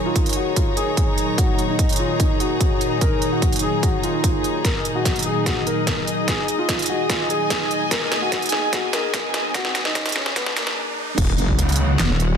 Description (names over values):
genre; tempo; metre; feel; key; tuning
heavy wobble dubstep; 147 BPM; 4/4; half-time; Eb minor; A4 = 440 Hz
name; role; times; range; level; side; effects
evolving wavetable pad; sustained chords; 0.0-12.4 s; Bb2 to Bb4; -27 LUFS; right 1 dB; phaser, built-in reverb, sidechain pumping
dark chamber string section; texture; 0.0-12.4 s; Eb4 to Bb5; -26 LUFS; left 1 dB; sidechain pumping
dark concert grand piano; melody; 0.1-11.1 s; Bb3 to Bb4; -26 LUFS; left 2 dB; low-pass filter, tape echo
dubstep drum kit; drums; 0.2-12.3 s; crash cymbal, handclaps, hi-hat, snare drum; -24 LUFS; right 1 dB; high-pass filter on hats, studio reverb, high-pass filter on snare, high-pass filter on cymbals
electronic kick drum; drums; 0.2-11.6 s; none; -22 LUFS; equal; studio reverb
riser and impact; sound effects; 6.5-12.4 s; none; -32 LUFS; right 1 dB; none
wobble bass; bass; 11.2-12.4 s; Eb1 to Gb1; -20 LUFS; equal; chorus, overdrive
snarling distorted saw bass; bass; 11.6-12.1 s; F1 to Db2; -18 LUFS; equal; overdrive
room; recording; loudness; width
light reverb, digital ambience; dense, heavily limited modern master, high-pass filter; -18 LUFS; side -7 dB against mid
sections
0.0-11.2 A section; 11.2-12.4 B section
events
build-up 0.0-11.2; filter sweep on ambient pad 0.0-11.2; filter sweep 0.0-11.2; drum fill 4.6-10.8; riser 6.5-11.2; break 10.8-11.2; drop 11.2-12.4; impact 11.2-12.4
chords
0.0 Ebm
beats
0.16 0.56 0.97 | 1.38 1.79 2.20 2.61 | 3.01 3.42 3.83 4.24 | 4.65 5.05 5.46 5.87 | 6.28 6.69 7.10 7.50 | 7.91 8.32 8.73 9.14 | 9.54 9.95 10.36 10.77 | 11.18 11.59 11.99